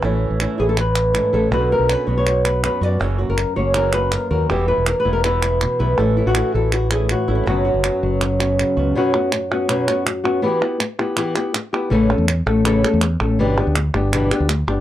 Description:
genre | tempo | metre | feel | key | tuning
flamenco | 162 BPM | 4/4 | straight | unclear | A4 = 441 Hz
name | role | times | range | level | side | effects
flamenco guitar | melody | 0.0-14.8 s | F#2 to D5 | -18 LUFS | left 1 dB | none
flamenco guitar | stabs | 0.0-9.0 s | B2 to F#4 | -26 LUFS | right 4 dB | none
mellow fretless electric bass | bass | 0.0-8.9, 11.9-14.8 s | E1 to F#2 | -20 LUFS | equal | none
palmas hand claps | percussion | 0.0-14.8 s | none | -23 LUFS | right 3 dB | none
room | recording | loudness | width
light reverb | dry, gritty hardware recording, transformer saturation | -16 LUFS | side -12 dB against mid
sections
0.0-9.0 A section; 9.0-14.8 B section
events
none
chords
0.0 A; 1.5 Bmadd9; 3.0 F#7; 4.5 Em; 6.0 A; 7.5 F#sus4; 10.4 Em; 11.9 A; 13.4 G6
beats
| 0.03 0.40 0.77 1.14 | 1.52 1.89 2.26 2.63 | 3.00 3.38 3.75 4.12 | 4.50 4.87 5.24 5.61 | 5.99 6.36 6.73 7.10 | 7.47 7.84 8.21 8.59 | 8.96 9.33 9.70 10.07 | 10.44 10.80 11.18 11.54 | 11.91 12.28 12.65 13.02 | 13.39 13.76 14.13 14.49

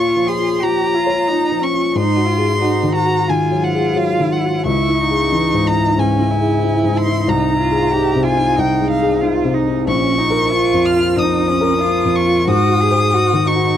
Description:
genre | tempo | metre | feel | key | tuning
neoclassical piano and strings | 92 BPM | 4/4 | rubato | Ab major | A4 = 438 Hz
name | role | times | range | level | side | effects
rich violin | melody | 0.0-13.8 s | F5 to F6 | -19 LUFS | left 2 dB | none
rich cello | second line | 0.0-13.8 s | Db4 to Ab4 | -20 LUFS | right 9 dB | none
dark grand piano | accompaniment | 0.0-13.8 s | Bb1 to Db5 | -16 LUFS | left 3 dB | none
room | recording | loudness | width
light reverb | dry, close 1970s-style studio recording | -13 LUFS | side -10 dB against mid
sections
0.0-13.8 A section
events
none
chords
0.0 Bbm; 1.9 Ab7; 4.7 Dbm; 7.3 Ab/C; 9.9 Bbm; 12.5 Ab7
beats
0.61 1.28 | 1.95 2.61 3.28 3.96 | 4.67 5.33 5.98 6.63 | 7.29 7.93 8.57 9.22 | 9.87 10.52 11.17 11.83 | 12.48 13.13

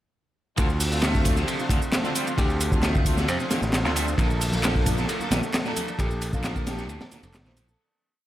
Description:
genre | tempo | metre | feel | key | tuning
breakbeat, breaks | 133 BPM | 4/4 | straight | D minor | A4 = 444 Hz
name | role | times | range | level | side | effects
lush unison pad | sustained chords | 0.6-7.8 s | D3 to F4 | -35 LUFS | equal | chorus, vintage 12-bit sampler grit, sidechain pumping
overdriven semi-hollow guitar | riff | 0.6-7.7 s | A2 to A3 | -33 LUFS | equal | tube saturation, ping-pong delay
clear studio string section | stabs | 0.6-7.8 s | Bb3 to C5 | -32 LUFS | right 1 dB | ping-pong delay
modern bright picked electric bass | bass | 0.6-7.7 s | F1 to F2 | -27 LUFS | equal | none
crunchy breakbeat drum kit | drums | 0.6-7.7 s | hi-hat, kick drum, ride cymbal, snare drum | -25 LUFS | equal | none
house drum kit | drums | 0.6-7.8 s | handclaps, hi-hat, shaker | -32 LUFS | right 1 dB | none
mellow alto saxophone | melody | 2.4-7.0 s | F4 to C5 | -36 LUFS | left 1 dB | old record sound, ping-pong delay
bongos and congas | percussion | 4.5-7.8 s | none | -37 LUFS | right 1 dB | none
room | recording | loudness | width
small room ambience | none | -22 LUFS | side -13 dB against mid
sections
0.6-7.8 drop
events
drop 0.6-7.8; fade-out 5.4-7.8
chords
0.6 Dm7; 4.2 Bbmaj7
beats
| 0.57 1.03 1.48 1.93 | 2.38 2.83 3.28 3.73 | 4.18 4.64 5.09 5.54 | 5.99 6.44 6.89 7.34

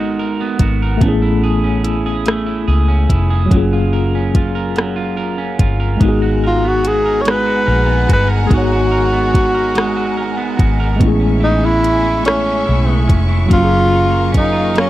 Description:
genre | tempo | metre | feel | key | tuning
slow six-eight R&B | 48 BPM (dotted quarters) | 6/8 | straight | unclear | A4 = 442 Hz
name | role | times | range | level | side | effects
breathy tenor saxophone | melody | 0.0-0.6, 6.5-14.9 s | C#4 to C#5 | -16 LUFS | equal | none
electric guitar at the edge of break-up | second line | 0.0-14.9 s | A2 to A#4 | -21 LUFS | right 6 dB | spring reverb, tape echo
tine electric piano | accompaniment | 0.0-14.9 s | F#3 to C#5 | -20 LUFS | left 2 dB | overdrive, fast stereo tremolo
vintage muted fingered electric bass | bass | 0.0-14.9 s | E#1 to C#2 | -17 LUFS | equal | none
smooth R&B drum kit | drums | 0.6-14.9 s | hi-hat, kick drum, rim click | -14 LUFS | equal | none
warm studio string section | sustained chords | 6.0-14.9 s | G#3 to C#6 | -26 LUFS | left 3 dB | none
room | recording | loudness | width
little or no reverb | dry, close 1970s-style studio recording | -12 LUFS | side -15 dB against mid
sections
0.0-14.9 A section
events
none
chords
0.0 G#m9; 1.0 Amaj7; 3.5 F#maj7; 6.0 G#m9; 11.0 Amaj7; 13.5 F#maj7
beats
| 1.01 2.26 | 3.51 4.76 | 6.01 7.26 | 8.51 9.76 | 11.01 12.26 | 13.51 14.76

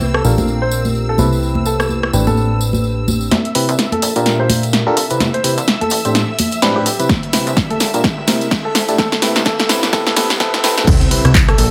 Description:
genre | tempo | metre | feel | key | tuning
piano house | 127 BPM | 4/4 | swing 58% on 16ths | C major | A4 = 441 Hz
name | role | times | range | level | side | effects
string machine, violins | sustained chords | 0.0-11.7 s | C4 to E6 | -30 LUFS | equal | ensemble chorus, sidechain pumping
barking FM electric piano | riff | 0.0-11.3 s | A2 to C5 | -21 LUFS | equal | chorus, cassette tape, sidechain pumping, low-pass filter
plucky analog bass | bass | 0.0-11.7 s | G1 to C2 | -22 LUFS | equal | sidechain pumping, high-pass filter
tambourine and congas | percussion | 0.0-10.9 s | none | -24 LUFS | equal | none
dark concert grand piano | melody | 0.1-11.7 s | G4 to C5 | -24 LUFS | equal | tape echo
punchy analog drum machine | drums | 0.1-11.7 s | crash cymbal, handclaps, hi-hat, rim click, snare drum | -19 LUFS | equal | overdrive
riser and sub drop | sound effects | 5.1-11.7 s | none | -28 LUFS | equal | none
electronic kick drum | drums | 7.1-11.5 s | none | -18 LUFS | equal | overdrive
tambourine and snare drum | drums | 10.9-11.7 s | none | -32 LUFS | equal | none
room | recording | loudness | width
light reverb, studio reverb | high-pass filter | -15 LUFS | mono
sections
0.0-3.3 A section; 3.3-10.9 B section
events
filter sweep on FM electric piano 0.0-3.3, 3.3-10.9; build-up 3.3-10.9; drum fill 3.3-10.9; filter sweep on string machine 3.3-10.9; filter sweep 3.3-10.9; impact 10.9-11.7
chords
0.2 Bb6; 1.2 Cmaj7; 2.1 Am11; 3.3 Cmaj7; 4.0 Bb6; 5.0 Cmaj7; 5.9 Am11; 7.1 Cmaj7; 7.8 Bb5; 8.7 Cmaj7; 9.7 Am9; 10.9 Cmaj7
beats
0.01 0.48 0.95 | 1.43 1.90 2.37 2.84 | 3.31 3.79 4.26 4.73 | 5.21 5.68 6.15 6.62 | 7.09 7.57 8.04 8.51 | 8.98 9.46 9.93 10.40 | 10.87 11.35

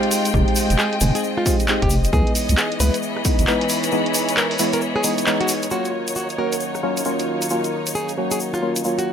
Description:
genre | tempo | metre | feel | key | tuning
UK garage, two-step garage | 134 BPM | 4/4 | swing 63% on 16ths | unclear | A4 = 441 Hz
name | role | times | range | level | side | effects
percussive organ stab | stabs | 0.0-9.1 s | Fb3 to Ab4 | -22 LUFS | equal | wide subtle chorus, dub echo
punchy analog drum machine | drums | 0.0-9.1 s | handclaps, hi-hat, rim click | -24 LUFS | right 1 dB | none
clear studio string section | texture | 0.0-9.1 s | Fb3 to Cb6 | -26 LUFS | left 2 dB | sidechain pumping
tube shaker | percussion | 0.1-9.1 s | none | -27 LUFS | left 4 dB | none
deep soft wobble bass | bass | 0.3-3.5 s | F1 to Db2 | -18 LUFS | equal | chorus, sidechain pumping
electronic kick drum | drums | 0.3-3.4 s | none | -21 LUFS | equal | none
nylon-string guitar | melody | 0.8-9.1 s | F4 to Cb5 | -27 LUFS | right 1 dB | tape echo
airy breathy pad | sustained chords | 5.9-9.1 s | Eb3 to F5 | -33 LUFS | right 2 dB | chorus, sidechain pumping
room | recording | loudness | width
light reverb, studio reverb | none | -18 LUFS | side -8 dB against mid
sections
0.0-5.7 A section; 5.7-9.1 B section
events
band accent 5.3; filter sweep on analog synth pad 5.7-9.1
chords
0.0 Fm9; 2.1 Dbm9; 5.7 Ebm9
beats
| 0.34 0.79 1.23 1.68 | 2.13 2.58 3.02 3.47 | 3.92 4.37 4.82 5.26 | 5.71 6.16 6.61 7.05 | 7.50 7.95 8.40 8.85

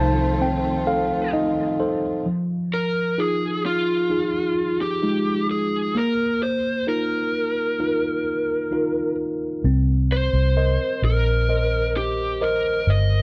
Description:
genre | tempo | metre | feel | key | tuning
pop ballad | 65 BPM | 4/4 | straight | unclear | A4 = 440 Hz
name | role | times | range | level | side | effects
lead guitar through a small cranked amp | melody | 0.0-13.2 s | F4 to Eb5 | -26 LUFS | equal | overdrive, plate reverb
tine electric piano | accompaniment | 0.0-13.2 s | F3 to A5 | -26 LUFS | equal | none
warm studio string section | sustained chords | 0.0-2.2 s | Eb3 to F4 | -33 LUFS | equal | plate reverb
vintage muted fingered electric bass | bass | 0.0-1.8, 9.6-13.2 s | G1 to C2 | -23 LUFS | equal | none
room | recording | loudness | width
light reverb | none | -22 LUFS | mono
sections
0.0-2.3 A section; 2.3-13.2 B section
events
tine electric piano fill 0.0-2.3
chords
0.0 F7; 2.3 Fm7; 6.0 Bbsus4; 9.6 Cm7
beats
0.41 1.34 | 2.26 3.18 4.11 5.03 | 5.95 6.88 7.80 8.72 | 9.64 10.57 11.49 12.41

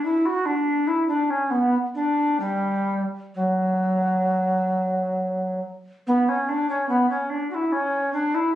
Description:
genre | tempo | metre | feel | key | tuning
classical, baroque-style fantasia for unaccompanied recorder | 63-74 BPM | 4/4 | rubato | unclear | A4 = 440 Hz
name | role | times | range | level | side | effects
bass recorder | solo | 0.0-8.5 s | F#3 to F#4 | -20 LUFS | equal | none
room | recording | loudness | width
moderate studio ambience, RT60 0.5 s | recorded on a phone in the room, club reverb | -21 LUFS | side -12 dB against mid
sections
0.0-6.1 A section; 6.1-8.6 B section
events
none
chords
none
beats
0.67 1.52 | 2.41 3.35 4.28 5.18 | 6.07 6.89 7.71

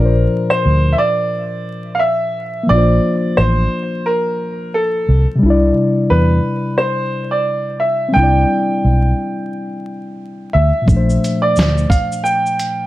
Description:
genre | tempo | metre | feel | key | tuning
lo-fi hip hop | 88 BPM | 4/4 | swing 59% on 16ths | unclear | A4 = 441 Hz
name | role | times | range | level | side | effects
bright upright piano | melody | 0.0-12.9 s | A4 to G5 | -18 LUFS | right 1 dB | low-pass filter
mellow reed electric piano | accompaniment | 0.0-12.9 s | Bb2 to D5 | -19 LUFS | left 2 dB | cassette tape, low-pass filter
vintage muted fingered electric bass | bass | 0.0-11.8 s | A1 to E2 | -14 LUFS | equal | none
dusty soul sampler-style drum kit | drums | 10.9-12.8 s | hi-hat, kick drum, shaker, snare drum | -16 LUFS | equal | none
room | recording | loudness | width
light reverb | vinyl crackle | -13 LUFS | side -16 dB against mid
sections
0.0-12.9 A section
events
none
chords
0.0 Bb; 5.4 Cadd9; 10.9 Bbmaj7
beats
0.65 1.33 2.01 | 2.69 3.37 4.06 4.74 | 5.42 6.10 6.78 7.46 | 8.15 8.83 9.51 10.19 | 10.87 11.56 12.24

